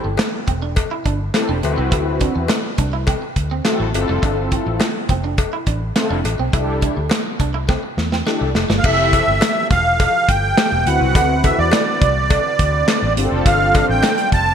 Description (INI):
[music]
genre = early-eighties boogie funk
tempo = 104 BPM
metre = 4/4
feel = straight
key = unclear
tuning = A4 = 441 Hz
[part]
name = mellow synth brass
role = accompaniment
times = 0.0-14.1 s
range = C4 to B4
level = -24 LUFS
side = left 2 dB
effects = chorus
[part]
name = electric guitar at the edge of break-up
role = riff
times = 0.0-8.8 s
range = G3 to E4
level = -28 LUFS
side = right 8 dB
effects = analog chorus
[part]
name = vintage muted fingered electric bass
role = bass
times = 0.0-14.5 s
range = E1 to E2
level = -21 LUFS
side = equal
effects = none
[part]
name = modern studio drum kit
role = drums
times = 0.2-14.5 s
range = crash cymbal, handclaps, hi-hat, kick drum, snare drum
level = -20 LUFS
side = equal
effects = gated reverb
[part]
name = cowbell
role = percussion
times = 0.2-14.2 s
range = none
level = -27 LUFS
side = left 8 dB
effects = none
[part]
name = musette accordion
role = melody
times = 8.8-14.5 s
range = D5 to A5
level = -17 LUFS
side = right 2 dB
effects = ping-pong delay
[part]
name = chorused pulse-width pad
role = sustained chords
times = 8.8-14.5 s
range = D3 to B4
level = -29 LUFS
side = equal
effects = none
[sound]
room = light reverb, small room ambience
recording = bright 1980s-style digital production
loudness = -15 LUFS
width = side -8 dB against mid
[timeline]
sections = 0.0-8.8 A section; 8.8-14.5 B section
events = drum fill 7.7-8.8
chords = 0.0 Fmaj9 (rootless); 1.6 D13; 3.9 G13sus4; 6.5 C69; 8.8 Fmaj9; 10.9 D13; 13.2 G9sus4